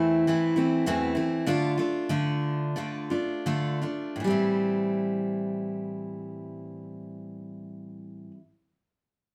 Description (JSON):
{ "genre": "folk", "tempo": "77-105 BPM", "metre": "4/4", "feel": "straight", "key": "A minor", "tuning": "A4 = 439 Hz", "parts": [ { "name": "picked steel-string acoustic guitar", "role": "accompaniment", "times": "0.0-8.4 s", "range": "E2 to F4", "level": "-28 LUFS", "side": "equal", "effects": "none" } ], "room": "moderate studio reverb, RT60 0.7 s", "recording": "none", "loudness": "-28 LUFS", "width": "mono", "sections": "0.0-4.2 A section; 4.2-7.3 B section", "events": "slowing down 0.0-4.2", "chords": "0.0 Amadd9/E; 1.5 Dm; 4.2 Am7" }